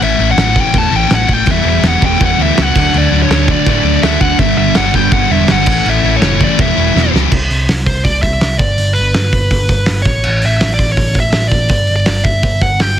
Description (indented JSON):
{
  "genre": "punk rock",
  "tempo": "164 BPM",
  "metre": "4/4",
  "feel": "straight",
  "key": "E dorian",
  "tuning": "A4 = 440 Hz",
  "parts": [
    { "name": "dark smooth lead guitar", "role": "melody", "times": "0.0-13.0 s", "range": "B4 to A5", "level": "-16 LUFS", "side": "right 1 dB", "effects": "overdrive, digital delay" },
    { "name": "sludgy distorted guitar", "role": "riff", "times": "0.0-7.3 s", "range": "G2 to E4", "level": "-15 LUFS", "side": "left 15 dB", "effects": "overdrive" },
    { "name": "overdriven picked electric bass", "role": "bass", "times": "0.0-13.0 s", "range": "E1 to A2", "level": "-16 LUFS", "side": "right 1 dB", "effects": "none" },
    { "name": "loose indie drum kit", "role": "drums", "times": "0.0-12.9 s", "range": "crash cymbal, hi-hat, kick drum, snare drum", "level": "-15 LUFS", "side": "right 1 dB", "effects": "none" },
    { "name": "raw garage guitar", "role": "riff", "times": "1.5-7.3 s", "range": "E2 to D4", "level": "-18 LUFS", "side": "right 17 dB", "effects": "overdrive" }
  ],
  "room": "little or no reverb",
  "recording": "dense, heavily limited modern master",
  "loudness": "-10 LUFS",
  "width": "side -10 dB against mid",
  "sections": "0.0-7.3 A section; 7.3-13.0 B section",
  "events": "drum fill 7.0-7.3",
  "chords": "0.0 A; 1.5 Em; 2.7 D; 4.4 G; 5.7 A; 6.6 Em; 7.3 C; 8.6 G; 10.1 A; 11.7 G5"
}